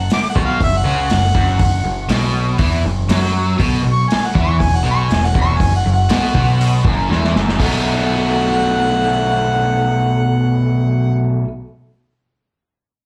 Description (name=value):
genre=blues rock power trio and southern rock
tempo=120 BPM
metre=4/4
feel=straight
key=B mixolydian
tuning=A4 = 440 Hz
part: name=mellow harmonica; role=melody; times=0.0-11.4 s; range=E5 to D6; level=-22 LUFS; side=equal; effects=overdrive, slapback echo
part: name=crunchy overdriven guitar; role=riff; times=0.0-11.5 s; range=E2 to D#4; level=-20 LUFS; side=equal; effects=slapback echo
part: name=growling picked electric bass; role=bass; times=0.0-11.4 s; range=E1 to F#2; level=-22 LUFS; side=equal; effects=overdrive
part: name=vintage drum kit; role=drums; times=0.1-7.7 s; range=hi-hat, kick drum, snare drum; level=-22 LUFS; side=equal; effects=none
room=light reverb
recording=live gig heard through the venue's PA, club reverb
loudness=-16 LUFS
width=mono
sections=0.0-7.6 A section; 7.6-11.6 B section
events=drum fill 7.1-7.6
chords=0.0 F#5; 3.6 Bsus24; 4.6 E5; 5.6 F#7sus4; 7.6 B7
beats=0.10 0.60 1.10 | 1.60 2.10 2.60 3.10 | 3.60 4.09 4.59 5.09 | 5.59 6.09 6.59 7.09 | 7.59 8.09 8.59 9.09 | 9.59 10.09 10.59 11.09